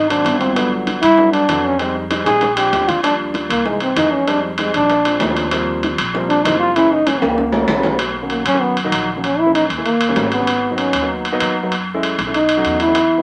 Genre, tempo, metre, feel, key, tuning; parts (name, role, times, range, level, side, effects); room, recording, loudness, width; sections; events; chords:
Afro-Cuban jazz; 194 BPM; 4/4; straight; Eb major, B major from 8.0 s; A4 = 440 Hz
warm trombone; melody; 0.0-13.2 s; F3 to Ab4; -18 LUFS; equal
upright bass; bass; 0.0-13.2 s; Gb1 to G2; -29 LUFS; equal
dark baby grand piano; accompaniment; 0.1-13.2 s; Eb3 to E4; -25 LUFS; equal
bongos; percussion; 0.1-7.9, 13.0-13.1 s; -28 LUFS; equal
timbales; percussion; 0.1-13.1 s; -23 LUFS; equal
moderate studio reverb, RT60 0.5 s; -17 LUFS; mono
0.0-8.0 A section; 8.0-13.2 A section
trombone solo 0.0-13.2; drum fill 2.3-3.0, 7.2-8.0
0.0 Ab9; 0.6 Gmaj7; 1.8 Fm7; 2.4 Bb7; 3.0 Ebmaj7; 3.7 C7alt; 4.3 Fm7; 4.9 Bb9; 5.5 Eb69; 6.8 Gb7; 8.0 Bmaj7; 9.2 A#m7b5; 9.9 D#7; 10.5 G#m7; 11.7 F#m7; 12.3 B7